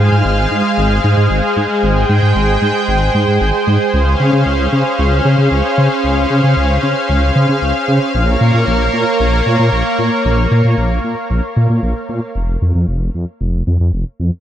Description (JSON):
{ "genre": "synthwave", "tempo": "114 BPM", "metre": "4/4", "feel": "straight", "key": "unclear", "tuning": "A4 = 436 Hz", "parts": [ { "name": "lush unison pad", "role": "sustained chords", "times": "0.0-12.3 s", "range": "Ab3 to G5", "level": "-15 LUFS", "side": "equal", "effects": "chorus" }, { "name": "dark detuned saw bass", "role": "bass", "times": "0.0-14.3 s", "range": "F1 to Db3", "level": "-14 LUFS", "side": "equal", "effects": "none" } ], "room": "light reverb, digital ambience", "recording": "none", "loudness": "-12 LUFS", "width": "side -10 dB against mid", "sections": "0.0-12.4 A section; 12.4-14.4 B section", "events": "none", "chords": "0.0 Ab6; 3.9 Dbmaj7; 8.1 Bbm; 12.4 N.C." }